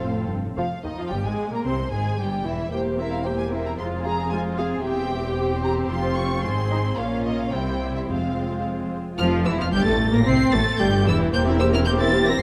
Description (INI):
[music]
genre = quick classical-period movement for string orchestra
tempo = 112 BPM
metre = 2/4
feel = rubato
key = F minor, F major from 9.2 s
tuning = A4 = 440 Hz
[part]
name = rich studio violin section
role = melody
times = 0.0-12.4 s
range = Eb5 to C7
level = -32 LUFS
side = equal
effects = none
[part]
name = warm studio violin section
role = second line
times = 0.0-12.4 s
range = Eb4 to F5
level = -32 LUFS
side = equal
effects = none
[part]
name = warm studio viola section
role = accompaniment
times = 0.0-12.4 s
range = Eb3 to Ab4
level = -28 LUFS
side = equal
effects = none
[part]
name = rich studio cello section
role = bass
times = 0.0-12.4 s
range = Eb2 to C3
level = -30 LUFS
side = equal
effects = none
[part]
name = rich studio double bass section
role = bass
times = 0.0-12.4 s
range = E1 to Eb2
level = -30 LUFS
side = equal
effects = none
[sound]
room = moderate scoring stage reverb, RT60 2.0 s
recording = dark, warm production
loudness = -23 LUFS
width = mono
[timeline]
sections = 0.6-9.2 A section; 9.2-12.4 A section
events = none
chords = 0.0 F; 0.6 Fm; 1.7 C; 2.7 C7/E; 3.8 Fm; 4.8 C/E; 5.9 Fm; 7.0 Bbm; 7.5 C; 8.1 Fm; 9.2 F; 10.3 C; 11.3 C7/E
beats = 0.00 | 0.57 1.12 | 1.66 2.19 | 2.72 3.26 | 3.78 4.30 | 4.83 5.37 | 5.90 6.43 | 6.97 7.52 | 8.08 8.64 | 9.19 9.73 | 10.27 10.80 | 11.34 11.87 | 12.39